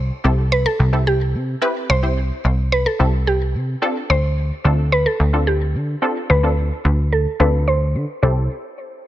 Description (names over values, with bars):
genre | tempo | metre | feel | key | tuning
dance-pop | 109 BPM | 4/4 | straight | C major | A4 = 440 Hz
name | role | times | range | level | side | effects
mallet-like synth pluck | melody | 0.0-8.5 s | G4 to C5 | -22 LUFS | equal | chorus, low-pass filter, ping-pong delay
wide unison pluck | accompaniment | 0.0-8.5 s | C4 to C5 | -24 LUFS | equal | low-pass filter
plucky analog bass | bass | 0.0-8.5 s | C2 to D3 | -17 LUFS | equal | none
room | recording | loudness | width
little or no reverb | none | -16 LUFS | side -13 dB against mid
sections
0.0-8.2 A section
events
filter sweep 0.0-8.2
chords
0.0 C6; 3.8 Dm7; 8.2 C6